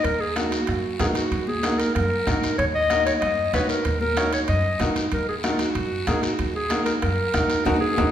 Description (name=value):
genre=latin, cumbia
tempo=189 BPM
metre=4/4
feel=straight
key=Eb minor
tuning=A4 = 441 Hz
part: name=warm clarinet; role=melody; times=0.0-8.1 s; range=F4 to Eb5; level=-24 LUFS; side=equal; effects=none
part: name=upright bass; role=bass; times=0.0-8.1 s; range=Bb1 to Gb2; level=-29 LUFS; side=equal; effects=none
part: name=bombo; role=percussion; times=0.0-8.1 s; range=none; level=-31 LUFS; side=right 2 dB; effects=none
part: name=guiro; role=percussion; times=0.0-8.1 s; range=none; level=-35 LUFS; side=left 2 dB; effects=none
part: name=timbales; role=percussion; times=0.0-8.1 s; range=none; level=-34 LUFS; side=right 4 dB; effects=none
part: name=bright upright piano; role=accompaniment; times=0.4-8.1 s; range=Eb4 to Db5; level=-27 LUFS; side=equal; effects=none
part: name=congas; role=percussion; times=0.4-8.1 s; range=none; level=-30 LUFS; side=left 1 dB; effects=none
room=wet recital hall reverb, RT60 1.4 s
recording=recorded in a church or concert hall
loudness=-20 LUFS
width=side -10 dB against mid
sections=0.0-8.1 A section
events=band accent 7.7-8.1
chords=0.0 Ebm